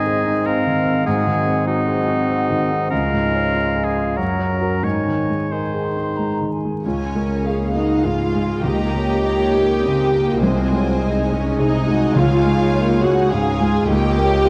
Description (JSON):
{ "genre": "classical, romantic movement for piano and orchestra", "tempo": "87-107 BPM", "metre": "3/4", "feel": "rubato", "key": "Db major", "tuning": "A4 = 439 Hz", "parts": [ { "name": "clear grand piano", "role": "melody", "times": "0.0-14.5 s", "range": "C2 to Eb5", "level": "-23 LUFS", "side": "equal", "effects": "none" }, { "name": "clear clarinet", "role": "second line", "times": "0.0-6.5 s", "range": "C4 to Eb4", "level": "-31 LUFS", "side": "equal", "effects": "none" }, { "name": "clear oboe", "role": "second line", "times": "0.0-6.5 s", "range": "Eb4 to Db5", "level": "-26 LUFS", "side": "equal", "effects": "none" }, { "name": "silver concert flute", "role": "second line", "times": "0.0-6.8 s", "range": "Eb5 to C6", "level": "-31 LUFS", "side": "equal", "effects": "none" }, { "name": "warm bassoon", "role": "accompaniment", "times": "0.0-6.5 s", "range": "Eb3 to Ab3", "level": "-28 LUFS", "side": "equal", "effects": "none" }, { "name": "warm French horn section", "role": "sustained chords", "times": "0.0-14.5 s", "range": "Eb3 to Ab4", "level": "-28 LUFS", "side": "equal", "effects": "none" }, { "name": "rich studio violin section", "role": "melody", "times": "6.8-14.5 s", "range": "C5 to Ab5", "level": "-33 LUFS", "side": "equal", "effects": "none" }, { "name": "warm studio violin section", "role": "second line", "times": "6.8-14.5 s", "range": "Db5 to Bb5", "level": "-31 LUFS", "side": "equal", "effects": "none" }, { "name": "dark studio viola section", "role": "accompaniment", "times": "6.8-14.5 s", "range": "Gb3 to Bb4", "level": "-28 LUFS", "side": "equal", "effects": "none" }, { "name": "dark studio double bass section", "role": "bass", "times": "6.8-14.5 s", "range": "C2 to Db2", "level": "-27 LUFS", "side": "equal", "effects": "none" }, { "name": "warm studio cello section", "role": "bass", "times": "6.8-14.5 s", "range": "C4 to Ab4", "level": "-25 LUFS", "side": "equal", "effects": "none" }, { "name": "timpani", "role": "percussion", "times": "8.6-13.0 s", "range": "Db3", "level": "-26 LUFS", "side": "equal", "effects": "none" } ], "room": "moderate scoring stage reverb, RT60 1.9 s", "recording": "dark, warm production, vinyl crackle", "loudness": "-19 LUFS", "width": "mono", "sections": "0.0-6.8 A section; 6.8-14.5 B section", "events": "none", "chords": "0.0 Ab; 1.1 Ab7; 2.9 Db; 4.2 Gb; 4.8 Ab; 6.8 Db; 8.6 Eb7/Db; 10.4 Ab7/C; 12.2 Db; 13.9 Eb7/Db" }